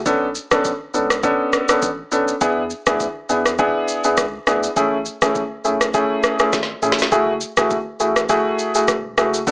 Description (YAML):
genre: afrobeats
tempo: 102 BPM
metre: 4/4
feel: swing 55% on 16ths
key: F# minor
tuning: A4 = 443 Hz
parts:
  - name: round analog bass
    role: bass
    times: 0.0-9.5 s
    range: E1 to E2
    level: -36 LUFS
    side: equal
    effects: none
  - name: warm baby grand piano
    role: accompaniment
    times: 0.1-9.5 s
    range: A3 to A4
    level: -18 LUFS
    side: equal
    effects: none
  - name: afro-pop drum kit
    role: drums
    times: 0.1-9.5 s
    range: kick drum, rim click, shaker, snare drum, toms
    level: -20 LUFS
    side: equal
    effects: overdrive
room: light reverb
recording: small speaker sound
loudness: -16 LUFS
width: side -27 dB against mid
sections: 0.0-9.5 A section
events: drum fill 6.5-7.1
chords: 0.1 Bm9; 2.4 E7; 4.8 Amaj7; 7.1 F#m9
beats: | 0.06 0.65 1.24 1.82 | 2.41 3.00 3.59 4.18 | 4.76 5.35 5.94 6.53 | 7.12 7.71 8.29 8.88 | 9.47